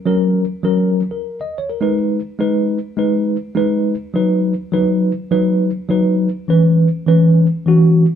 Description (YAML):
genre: soul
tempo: 102 BPM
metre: 4/4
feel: swing 60% on 8ths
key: F# mixolydian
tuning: A4 = 441 Hz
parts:
  - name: mellow tine electric piano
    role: solo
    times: 0.1-8.1 s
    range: E3 to D#5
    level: -14 LUFS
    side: equal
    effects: medium stereo tremolo
room: wet studio reverb, RT60 0.8 s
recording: band playing live in one room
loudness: -14 LUFS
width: side -9 dB against mid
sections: 0.0-8.2 A section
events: none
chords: 0.0 F#; 1.8 G#m; 4.1 B; 6.5 C#m7